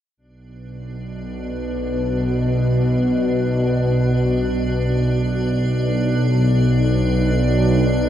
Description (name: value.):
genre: ambient.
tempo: free time.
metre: none.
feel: none.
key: B minor.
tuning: A4 = 445 Hz.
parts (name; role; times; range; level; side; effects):
bowed-like drone; drone; 0.7-8.1 s; B1 to B2; -17 LUFS; equal; built-in reverb.
icy glass pad; texture; 0.9-8.1 s; D4 to D5; -29 LUFS; right 1 dB; chorus, built-in reverb.
room: wet huge ambient reverb, RT60 8.4 s.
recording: in a vast, echoing space.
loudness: -17 LUFS.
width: side -10 dB against mid.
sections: 0.2-8.1 A section.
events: fade-in on ambient pad 0.2-8.1.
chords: 0.2 Bm.